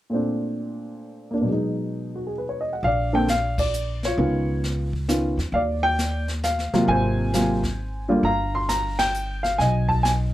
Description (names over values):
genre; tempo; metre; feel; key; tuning
jazz piano trio; 133 BPM; 3/4; swing 66% on 8ths; unclear; A4 = 438 Hz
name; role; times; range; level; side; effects
dark baby grand piano; melody; 0.1-10.3 s; Bb2 to C6; -23 LUFS; equal; none
upright bass; bass; 2.8-10.3 s; G1 to E2; -25 LUFS; equal; none
jazz brush drum kit; drums; 2.8-10.3 s; brushed snare drum, hi-hat, kick drum, ride cymbal, snare drum; -30 LUFS; left 1 dB; none
room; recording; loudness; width
light reverb; none; -21 LUFS; side -14 dB against mid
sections
0.1-2.8 A section; 2.8-10.3 B section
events
band accent 3.5, 8.9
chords
0.1 Bbmaj9; 1.5 B6; 2.8 Bb; 4.2 Db9; 5.5 Ebmaj9; 6.9 Ab13; 8.2 Gm7; 9.6 B7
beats
| 0.12 0.57 1.02 | 1.48 1.93 2.38 | 2.83 3.28 3.73 | 4.18 4.63 5.09 | 5.54 5.99 6.44 | 6.89 7.34 7.79 | 8.24 8.69 9.14 | 9.59 10.04